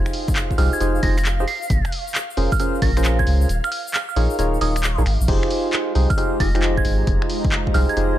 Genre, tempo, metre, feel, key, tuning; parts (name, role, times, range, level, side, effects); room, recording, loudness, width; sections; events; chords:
UK garage, two-step garage; 134 BPM; 4/4; swing 66% on 16ths; F minor; A4 = 438 Hz
ethereal airy pad; sustained chords; 0.0-8.2 s; F5 to Bb5; -33 LUFS; right 3 dB; ensemble chorus, built-in reverb, sidechain pumping
percussive organ stab; stabs; 0.0-8.2 s; Db4 to Eb5; -24 LUFS; right 1 dB; chorus
soft dub sub bass; bass; 0.0-8.2 s; Eb1 to Db2; -19 LUFS; equal
punchy analog drum machine; drums; 0.1-8.1 s; crash cymbal, finger snaps, handclaps, hi-hat; -27 LUFS; equal
egg shaker; percussion; 0.1-5.3 s; -38 LUFS; left 5 dB
electronic kick drum; drums; 0.3-7.7 s; -22 LUFS; equal
glassy synth bell; melody; 0.6-8.2 s; Eb6 to C7; -28 LUFS; right 3 dB; chorus, ping-pong delay
airy breathy pad; texture; 5.7-8.2 s; Ab3 to Eb5; -28 LUFS; right 1 dB; chorus, sidechain pumping
light reverb, digital ambience; dark, warm production; -17 LUFS; side -13 dB against mid
0.0-5.3 A section; 5.3-8.2 A section
drop 0.0-5.3, 5.3-8.2; kick drops out 3.5-5.3
0.0 Fm9; 1.5 Bbm9; 3.5 Eb9sus4; 5.3 Fm9